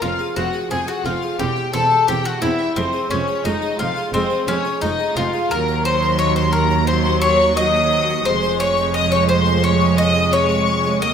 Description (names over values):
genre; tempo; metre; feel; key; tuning
classical, baroque-style concerto movement with solo episodes; 87 BPM; 4/4; straight; unclear; A4 = 440 Hz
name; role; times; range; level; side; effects
bowl-back mandolin; melody; 0.0-11.1 s; C4 to Eb5; -21 LUFS; left 3 dB; none
rich studio violin section; melody; 0.0-11.1 s; C5 to Eb6; -25 LUFS; left 6 dB; none
rich studio violin section; second line; 0.0-11.1 s; C4 to Eb5; -23 LUFS; left 1 dB; none
harpsichord; accompaniment; 0.0-11.1 s; Eb2 to F5; -29 LUFS; right 1 dB; none
warm studio viola section; accompaniment; 0.0-11.1 s; Gb3 to C4; -26 LUFS; right 2 dB; none
clear chamber double bass section; bass; 0.0-11.1 s; E1 to Eb2; -25 LUFS; right 4 dB; none
rich studio cello section; bass; 0.0-11.1 s; Eb2 to F2; -24 LUFS; right 4 dB; none
room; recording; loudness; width
wet recital hall reverb, RT60 1.4 s; none; -16 LUFS; side -7 dB against mid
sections
0.0-11.1 A section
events
none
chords
0.0 Fm; 1.4 C/E; 2.8 Fm; 5.5 Ebm; 6.9 Cdim/Eb; 8.3 Fm; 9.6 Db/F